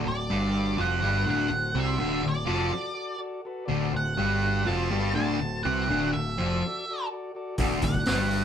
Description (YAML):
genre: garage rock duo or trio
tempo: 124 BPM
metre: 4/4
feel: straight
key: D mixolydian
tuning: A4 = 443 Hz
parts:
  - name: combo organ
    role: sustained chords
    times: 0.0-8.4 s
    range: F#4 to E5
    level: -37 LUFS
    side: left 2 dB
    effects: spring reverb
  - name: fuzz guitar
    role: riff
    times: 0.0-8.4 s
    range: D2 to C4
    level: -27 LUFS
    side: left 1 dB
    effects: distortion
  - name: growling picked electric bass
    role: bass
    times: 0.0-8.4 s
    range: D1 to C2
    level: -30 LUFS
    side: equal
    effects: overdrive
  - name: octave-fuzz lead guitar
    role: melody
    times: 0.1-8.4 s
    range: D5 to A5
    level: -30 LUFS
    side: right 2 dB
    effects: distortion
  - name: raw garage drum kit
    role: drums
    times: 7.6-8.4 s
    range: hi-hat, kick drum, snare drum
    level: -28 LUFS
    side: equal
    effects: none
room: moderate studio reverb, RT60 0.5 s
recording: band playing live in one room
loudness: -24 LUFS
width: side -8 dB against mid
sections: 0.0-8.4 A section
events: none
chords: 0.0 D